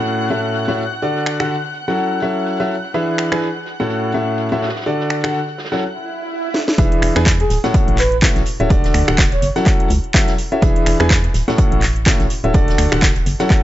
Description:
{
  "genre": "piano house",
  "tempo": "125 BPM",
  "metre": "4/4",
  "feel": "swing 57% on 16ths",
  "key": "E mixolydian",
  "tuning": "A4 = 444 Hz",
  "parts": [
    { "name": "dark studio violin section", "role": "sustained chords", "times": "0.0-6.8 s", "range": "F#5 to F#6", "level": "-27 LUFS", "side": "left 2 dB", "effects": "sidechain pumping" },
    { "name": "clear grand piano", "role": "riff", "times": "0.0-13.6 s", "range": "A2 to G#5", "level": "-19 LUFS", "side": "left 1 dB", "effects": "sidechain pumping, tape echo" },
    { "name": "natural country drum kit", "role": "drums", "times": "0.1-13.6 s", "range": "hi-hat, snare drum", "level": "-32 LUFS", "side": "right 2 dB", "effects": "high-pass filter on hats, low-pass filter on hats, high-pass filter on snare, low-pass filter on snare, high-pass filter on room, low-pass filter on room" },
    { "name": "house drum kit", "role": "drums", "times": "1.3-13.6 s", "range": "finger snaps, handclaps, hi-hat, snare drum", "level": "-21 LUFS", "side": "equal", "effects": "overdrive" },
    { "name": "swell", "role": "sound effects", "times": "6.0-6.8 s", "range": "none", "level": "-25 LUFS", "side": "right 4 dB", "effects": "none" },
    { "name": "organ-like FM bass", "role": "bass", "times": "6.8-13.4 s", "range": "D1 to E2", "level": "-19 LUFS", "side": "equal", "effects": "sidechain pumping" },
    { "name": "electronic kick drum", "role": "drums", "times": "6.8-13.6 s", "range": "none", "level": "-16 LUFS", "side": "equal", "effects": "overdrive" },
    { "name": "breathy flute-like synth lead", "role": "melody", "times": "7.4-9.5 s", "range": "G#4 to C#5", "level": "-22 LUFS", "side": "right 1 dB", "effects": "tremolo, analog chorus, tape echo" }
  ],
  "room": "studio reverb",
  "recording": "dry, gritty hardware recording, nothing above 7.8 kHz",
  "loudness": "-14 LUFS",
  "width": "side -14 dB against mid",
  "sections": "0.0-6.8 A section; 6.8-13.6 B section",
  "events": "swell 6.0-6.8; drum fill 6.5; drop 6.8-13.6",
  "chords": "0.1 A6; 1.0 D; 1.7 F#m7; 2.9 E7; 3.9 A6; 4.9 D; 5.6 N.C.; 6.8 E7; 7.7 A6; 8.7 D; 9.4 F#m7; 10.6 E7; 11.6 A6; 12.5 D",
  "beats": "0.06 0.54 | 1.02 1.50 1.98 2.46 | 2.94 3.42 3.90 4.38 | 4.86 5.34 5.82 6.30 | 6.78 7.26 7.74 8.22 | 8.70 9.18 9.66 10.14 | 10.62 11.10 11.58 12.06 | 12.54 13.02 13.50"
}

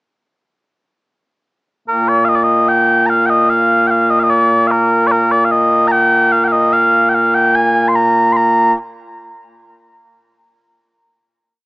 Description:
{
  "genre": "scottish traditional, Scottish pipe music",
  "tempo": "74 BPM",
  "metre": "2/4",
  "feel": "straight",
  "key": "Bb mixolydian",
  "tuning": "A4 = 436 Hz",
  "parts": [
    { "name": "mellow small bagpipes", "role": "solo", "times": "1.9-8.7 s", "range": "Bb2 to C6", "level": "-10 LUFS", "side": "equal", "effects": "none" }
  ],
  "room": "light reverb, small room ambience",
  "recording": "rough home demo mix, small speaker sound",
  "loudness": "-10 LUFS",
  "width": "side -29 dB against mid",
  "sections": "1.9-8.4 A section; 8.4-10.0 final note",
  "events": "none",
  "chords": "none",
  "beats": "| 1.87 2.69 | 3.50 4.31 | 5.12 5.93 | 6.74 7.55 | 8.36"
}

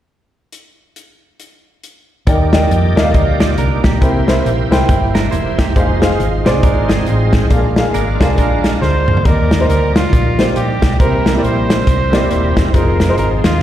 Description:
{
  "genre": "uptempo gospel",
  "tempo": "138 BPM",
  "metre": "4/4",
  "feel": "swing 60% on 8ths",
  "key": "Eb major",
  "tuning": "A4 = 440 Hz",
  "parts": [
    { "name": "natural country drum kit", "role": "drums", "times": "0.5-13.5 s", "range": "hi-hat, kick drum, snare drum, toms", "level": "-15 LUFS", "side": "equal", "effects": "none" },
    { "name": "warm upright piano", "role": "accompaniment", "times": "2.3-13.5 s", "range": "Bb2 to G5", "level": "-18 LUFS", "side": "left 1 dB", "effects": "slapback echo" },
    { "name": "bright tonewheel organ", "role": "sustained chords", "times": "2.3-13.6 s", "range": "F3 to D5", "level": "-22 LUFS", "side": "right 3 dB", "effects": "slow rotary speaker, overdrive, chorus vibrato" },
    { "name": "hollow-body short-scale fingered electric bass", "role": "bass", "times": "2.3-13.6 s", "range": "Eb1 to F2", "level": "-16 LUFS", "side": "equal", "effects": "none" },
    { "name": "clean electric guitar", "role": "second line", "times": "3.4-9.0 s", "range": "Bb3 to D5", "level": "-24 LUFS", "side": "right 8 dB", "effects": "slapback echo" },
    { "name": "clear trumpet", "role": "melody", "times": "8.8-13.6 s", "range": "F4 to D5", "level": "-19 LUFS", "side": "right 1 dB", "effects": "slapback echo" }
  ],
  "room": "light reverb, studio ambience",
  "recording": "live gig heard through the venue's PA, recital hall reverb",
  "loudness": "-11 LUFS",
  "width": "side -12 dB against mid",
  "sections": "0.5-2.3 A section; 2.3-9.3 B section; 9.3-13.6 C section",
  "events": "drum fill 8.8-9.3",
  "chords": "0.5 N.C.; 2.3 Ebmaj7; 4.0 C7; 5.8 Fm7; 7.5 Bb7; 9.3 Ebmaj7; 11.0 C7; 12.7 Fm7",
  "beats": "| 0.53 0.96 1.40 1.83 | 2.27 2.71 3.14 3.58 | 4.02 4.45 4.89 5.33 | 5.76 6.20 6.63 7.07 | 7.51 7.94 8.38 8.82 | 9.25 9.69 10.12 10.56 | 11.00 11.43 11.87 12.31 | 12.74 13.18 13.61"
}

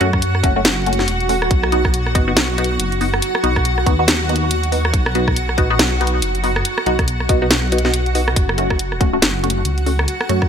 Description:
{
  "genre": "deep dubstep",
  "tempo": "140 BPM",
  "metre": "4/4",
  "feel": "swing 59% on 16ths, half-time",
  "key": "unclear",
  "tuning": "A4 = 441 Hz",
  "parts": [
    { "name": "granular cloud pad", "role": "sustained chords", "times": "0.0-10.5 s", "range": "F#4 to F#5", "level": "-22 LUFS", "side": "right 1 dB", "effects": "built-in reverb, wide subtle chorus" },
    { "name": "filtered dub chord stab", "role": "stabs", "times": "0.0-10.4 s", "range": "A3 to F#4", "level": "-21 LUFS", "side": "left 1 dB", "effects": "phaser, dub echo" },
    { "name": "dark detuned saw bass", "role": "bass", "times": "0.0-10.5 s", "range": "E1 to F#2", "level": "-20 LUFS", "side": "equal", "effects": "none" },
    { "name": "garage drum kit", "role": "drums", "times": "0.0-10.5 s", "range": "hi-hat, rim click, snare drum", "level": "-20 LUFS", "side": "equal", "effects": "none" },
    { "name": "electronic kick drum", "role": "drums", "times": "0.1-10.5 s", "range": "none", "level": "-17 LUFS", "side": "equal", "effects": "none" }
  ],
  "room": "light reverb, digital ambience",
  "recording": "bright 1980s-style digital production",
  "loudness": "-15 LUFS",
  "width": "side -8 dB against mid",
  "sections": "0.0-10.5 A section",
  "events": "none",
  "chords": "0.0 F#m; 1.5 B; 8.4 F#m",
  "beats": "0.22 0.65 1.08 | 1.51 1.94 2.36 2.79 | 3.22 3.65 4.08 4.51 | 4.94 5.36 5.79 6.22 | 6.65 7.08 7.51 7.94 | 8.36 8.79 9.22 9.65 | 10.08"
}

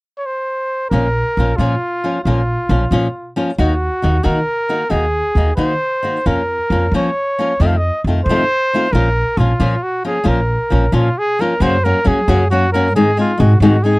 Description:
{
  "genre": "mexican folk, mariachi",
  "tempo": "90 BPM (dotted quarters)",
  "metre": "6/8",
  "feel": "rubato",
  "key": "Bb minor",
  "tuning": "A4 = 441 Hz",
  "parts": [
    { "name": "warm trumpet", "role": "melody", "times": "0.2-14.0 s", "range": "F4 to F5", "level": "-18 LUFS", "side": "equal", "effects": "none" },
    { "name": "flamenco guitar", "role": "accompaniment", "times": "0.9-14.0 s", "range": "F2 to Ab4", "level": "-17 LUFS", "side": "left 2 dB", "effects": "none" },
    { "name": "upright bass", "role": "bass", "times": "0.9-14.0 s", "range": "Bb1 to Gb3", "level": "-16 LUFS", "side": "equal", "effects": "none" }
  ],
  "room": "little or no reverb",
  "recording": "dry, close 1970s-style studio recording",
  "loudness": "-13 LUFS",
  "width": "side -23 dB against mid",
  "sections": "0.9-11.6 A section; 11.6-14.0 B section",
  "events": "none",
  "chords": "0.0 N.C.; 0.9 Bbm; 3.6 Ebm; 6.3 Bbm/F; 7.6 F7; 8.9 Bbm; 11.6 Gb; 13.0 Ab",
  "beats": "0.24 | 0.92 1.60 | 2.27 2.93 | 3.59 4.25 | 4.91 5.59 | 6.27 6.95 | 7.61 8.27 | 8.93 9.60 | 10.26 10.94 | 11.62 12.29 | 12.96 13.61"
}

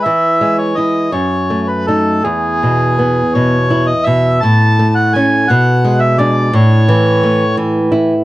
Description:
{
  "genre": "romantic duo for bandoneon and classical guitar",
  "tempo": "55 BPM (dotted quarters)",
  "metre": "6/8",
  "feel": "uneven beats, rubato",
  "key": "E major",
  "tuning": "A4 = 440 Hz",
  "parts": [
    { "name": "bandoneon", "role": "melody", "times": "0.0-7.6 s", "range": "G#4 to A5", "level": "-15 LUFS", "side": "equal", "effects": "none" },
    { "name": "nylon-string guitar", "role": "accompaniment", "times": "0.0-8.2 s", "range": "E2 to E4", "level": "-12 LUFS", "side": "equal", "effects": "none" }
  ],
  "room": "moderate booth ambience, RT60 0.3 s",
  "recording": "worn, warbling old tape, cassette tape, warbly pitch drift",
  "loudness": "-10 LUFS",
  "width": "side -16 dB against mid",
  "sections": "0.0-8.2 A section",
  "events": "none",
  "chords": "0.0 E; 1.1 D#dim/F#; 2.2 E; 4.4 A; 5.5 G#dim/B; 6.5 A",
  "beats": "| 0.04 1.12 | 2.24 3.34 | 4.42 5.49 | 6.54 7.58"
}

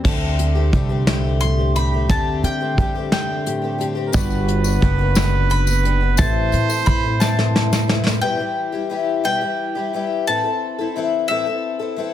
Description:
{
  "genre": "indie folk with a building arrangement",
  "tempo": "59 BPM (dotted quarters)",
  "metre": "6/8",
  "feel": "straight",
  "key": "unclear",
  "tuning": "A4 = 440 Hz",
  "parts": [
    { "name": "fingerpicked steel-string acoustic guitar", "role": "accompaniment", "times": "0.0-6.2 s", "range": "A2 to G4", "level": "-27 LUFS", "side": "left 1 dB", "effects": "none" },
    { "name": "upright bass", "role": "bass", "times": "0.0-8.2 s", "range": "F#1 to D3", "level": "-20 LUFS", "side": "right 1 dB", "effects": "none" },
    { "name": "soft brush drum kit", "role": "drums", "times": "0.0-8.2 s", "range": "crash cymbal, hi-hat, kick drum, snare drum", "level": "-20 LUFS", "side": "equal", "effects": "soft clipping on kick" },
    { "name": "picked twelve-string acoustic guitar", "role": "accompaniment", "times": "0.1-12.1 s", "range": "E2 to A4", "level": "-24 LUFS", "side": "left 6 dB", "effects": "none" },
    { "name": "bowl-back mandolin", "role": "melody", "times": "1.4-12.0 s", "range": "E5 to C6", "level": "-24 LUFS", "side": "left 1 dB", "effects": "none" },
    { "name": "warm trumpet", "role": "second line", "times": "4.1-7.9 s", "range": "A#4 to C5", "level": "-25 LUFS", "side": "right 8 dB", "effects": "digital delay" },
    { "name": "dark grand piano", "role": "accompaniment", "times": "4.1-8.2 s", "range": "A1 to E5", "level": "-33 LUFS", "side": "right 8 dB", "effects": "none" },
    { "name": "tambourine", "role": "percussion", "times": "4.1-8.2 s", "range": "none", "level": "-31 LUFS", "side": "left 14 dB", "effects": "none" }
  ],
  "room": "small room reverb",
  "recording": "dense, heavily limited modern master",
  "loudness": "-17 LUFS",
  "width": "side -11 dB against mid",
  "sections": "0.0-8.2 A section; 8.2-12.1 B section",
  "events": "drum fill 7.2-8.2",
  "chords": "0.0 D7sus4; 4.1 Gmaj7; 6.2 Am; 8.2 Em; 10.3 Am",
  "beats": "| 0.05 1.07 | 2.10 3.12 | 4.14 5.16 | 6.19 7.21 | 8.23 9.25 | 10.27 11.29"
}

